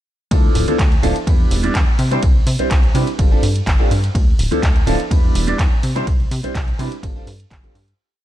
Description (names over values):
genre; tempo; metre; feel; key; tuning
filtered disco house; 125 BPM; 4/4; straight; D dorian; A4 = 441 Hz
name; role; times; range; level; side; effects
warm baby grand piano; accompaniment; 0.3-7.7 s; F3 to D5; -22 LUFS; right 1 dB; phaser, sidechain pumping
plucky analog bass; bass; 0.3-7.9 s; D1 to C3; -20 LUFS; equal; sidechain pumping
electronic kick drum; drums; 0.3-7.6 s; none; -16 LUFS; equal; none
punchy analog drum machine; drums; 0.3-8.0 s; handclaps, hi-hat, ride cymbal; -27 LUFS; right 1 dB; sidechain pumping on hats, sidechain pumping on cymbals
room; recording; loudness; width
digital ambience; dark, warm production; -14 LUFS; side -13 dB against mid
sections
0.3-8.0 drop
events
drop 0.3-8.0; fade-out 5.4-8.0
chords
0.3 Dm69; 1.3 Em7; 2.0 Cadd9; 3.2 G9sus4; 4.2 Dm69; 5.1 Em7; 5.8 Cadd9; 7.0 G9sus4